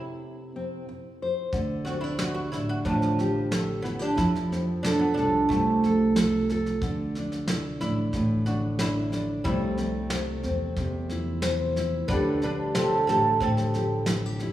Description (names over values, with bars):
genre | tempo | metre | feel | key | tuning
acoustic folk duo or small band | 91 BPM | 4/4 | straight | unclear | A4 = 440 Hz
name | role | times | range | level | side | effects
oud | melody | 0.0-14.5 s | F3 to B4 | -27 LUFS | right 2 dB | none
nylon-string guitar | accompaniment | 0.0-14.5 s | A2 to C5 | -28 LUFS | left 1 dB | none
upright bass | bass | 1.5-14.5 s | A1 to F2 | -31 LUFS | right 1 dB | none
soft brush drum kit | drums | 1.5-14.5 s | kick drum, snare drum | -32 LUFS | right 1 dB | none
room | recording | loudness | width
wet recital hall reverb, RT60 1.8 s | heard from further back in the room, small room reverb | -24 LUFS | side -13 dB against mid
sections
0.0-1.5 A section; 1.5-14.5 B section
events
oud solo 1.5-14.5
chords
0.0 Am/C; 1.5 Dsus4; 4.2 F; 6.8 D5; 9.5 Am/C; 12.1 Dsus4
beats
0.21 0.87 | 1.53 2.19 2.86 3.52 | 4.18 4.84 5.50 6.16 | 6.82 7.48 8.14 8.80 | 9.46 10.12 10.78 11.43 | 12.09 12.75 13.41 14.07